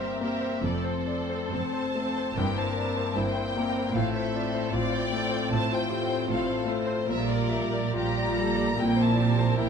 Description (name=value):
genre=classical, romantic movement for piano and orchestra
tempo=64-78 BPM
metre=4/4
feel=rubato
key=F major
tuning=A4 = 440 Hz
part: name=clear baby grand piano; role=melody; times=0.0-9.7 s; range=F2 to E5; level=-29 LUFS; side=left 2 dB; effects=none
part: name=warm symphonic violin section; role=melody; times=0.0-9.7 s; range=C5 to Bb5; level=-34 LUFS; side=left 3 dB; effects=none
part: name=rich studio violin section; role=second line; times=0.0-9.7 s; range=G4 to D5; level=-35 LUFS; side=left 2 dB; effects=none
part: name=rich symphonic viola section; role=accompaniment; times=0.0-9.7 s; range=F3 to Bb4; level=-35 LUFS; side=right 2 dB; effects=none
part: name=mellow French horn section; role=sustained chords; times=0.0-9.7 s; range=G3 to F4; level=-35 LUFS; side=left 6 dB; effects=none
part: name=rich symphonic cello section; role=bass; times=0.0-9.7 s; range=F2 to Bb2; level=-33 LUFS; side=right 4 dB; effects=none
part: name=warm symphonic double bass section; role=bass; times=0.0-9.7 s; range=F1 to Bb1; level=-32 LUFS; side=right 7 dB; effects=none
room=moderate concert hall reverb, RT60 2.2 s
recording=close, detailed microphones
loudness=-25 LUFS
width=side -6 dB against mid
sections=0.0-9.7 A section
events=none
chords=0.0 C5/G; 0.6 F; 2.4 C7/G; 3.9 F/A; 7.1 Gm7/Bb; 8.8 C7/Bb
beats=| 0.63 1.54 2.36 3.16 | 3.94 4.72 5.51 6.29 | 7.08 7.96 8.78 9.60